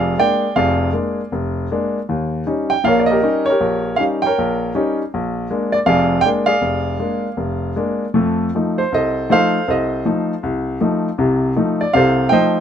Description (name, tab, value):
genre	solo jazz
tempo	159 BPM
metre	4/4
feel	swing 66% on 8ths, rubato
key	Bb mixolydian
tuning	A4 = 440 Hz
part	warm baby grand piano	solo	0.0-12.6 s	F1 to G5	-15 LUFS	equal	none
room	moderate studio reverb, RT60 0.7 s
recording	minimal, uncompressed stereo recording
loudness	-15 LUFS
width	side -8 dB against mid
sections	0.0-12.6 A section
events	none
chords	0.0 Bb7; 2.1 Eb7; 5.1 Bb7; 8.2 F7